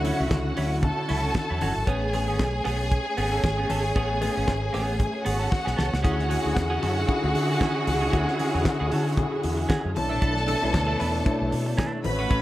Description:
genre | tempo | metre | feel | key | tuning
disco | 115 BPM | 4/4 | swing 56% on 16ths | unclear | A4 = 440 Hz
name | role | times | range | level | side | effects
clear studio string section | second line | 0.0-12.4 s | F#4 to B5 | -29 LUFS | left 1 dB | none
clean electric guitar | accompaniment | 0.0-12.4 s | F#3 to B4 | -33 LUFS | right 3 dB | phaser
tine electric piano | accompaniment | 0.0-12.4 s | B2 to C#5 | -31 LUFS | left 3 dB | none
dark studio string section | sustained chords | 0.0-12.4 s | D3 to G#4 | -31 LUFS | right 2 dB | none
fingered electric bass with an envelope filter | bass | 0.0-12.4 s | G1 to D3 | -28 LUFS | equal | none
damped 70s drum kit | drums | 0.0-12.4 s | hi-hat, kick drum, snare drum | -28 LUFS | equal | none
congas | percussion | 0.1-12.2 s | none | -36 LUFS | left 3 dB | none
room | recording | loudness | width
small room reverb | dark, warm production | -22 LUFS | side -15 dB against mid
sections
0.0-6.0 A section; 6.0-12.4 B section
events
drum fill 5.5-6.0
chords
0.0 Dmaj9; 1.9 Amaj9; 6.0 Dmaj9#11; 10.0 Bm11

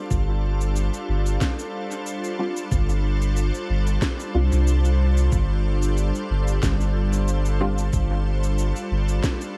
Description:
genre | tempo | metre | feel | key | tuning
ambient dub | 92 BPM | 4/4 | swing 54% on 16ths | unclear | A4 = 444 Hz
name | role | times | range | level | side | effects
soft additive organ-like pad | sustained chords | 0.0-9.6 s | G3 to C5 | -31 LUFS | equal | ensemble chorus, built-in reverb
soft dub sub bass | bass | 0.1-9.2 s | G1 to C2 | -23 LUFS | equal | none
electronic cabasa and snare drum | drums | 0.1-9.5 s | none | -34 LUFS | equal | dub echo
electronic kick drum | drums | 0.1-9.4 s | none | -27 LUFS | equal | none
filtered dub chord stab | stabs | 2.4-7.8 s | G3 to F4 | -33 LUFS | equal | ensemble chorus, dub echo
room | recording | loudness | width
digital ambience | vinyl crackle | -23 LUFS | mono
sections
0.0-9.6 A section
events
none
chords
0.0 G7sus4

